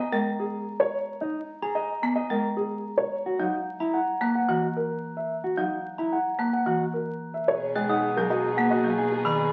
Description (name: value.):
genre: classical, minimalist pattern music.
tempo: 110 BPM.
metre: 4/4.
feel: straight.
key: unclear.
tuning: A4 = 440 Hz.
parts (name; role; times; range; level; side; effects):
dark grand piano; melody; 0.0-9.3 s; G#4 to A#5; -31 LUFS; equal; none.
folk marimba with hard mallets; accompaniment; 0.0-9.4 s; D#3 to B3; -32 LUFS; equal; none.
mellow electric guitar; arpeggios; 0.1-9.2 s; D#4 to A#4; -32 LUFS; equal; none.
glockenspiel with brass mallets; arpeggios; 1.6-9.4 s; A#5 to F#6; -38 LUFS; equal; none.
mellow French horn; second line; 7.5-9.5 s; G#4; -32 LUFS; equal; none.
rich studio string section; sustained chords; 7.5-9.5 s; D#4 to G#4; -40 LUFS; equal; none.
rich cello; bass; 7.5-9.5 s; B2; -37 LUFS; equal; none.
room: wet large studio reverb, RT60 1.0 s.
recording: very old 78 rpm record, vinyl crackle.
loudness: -27 LUFS.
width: mono.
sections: 0.0-7.5 A section; 7.5-9.5 B section.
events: none.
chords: 0.0 G#madd9; 3.1 F#7; 7.5 B6.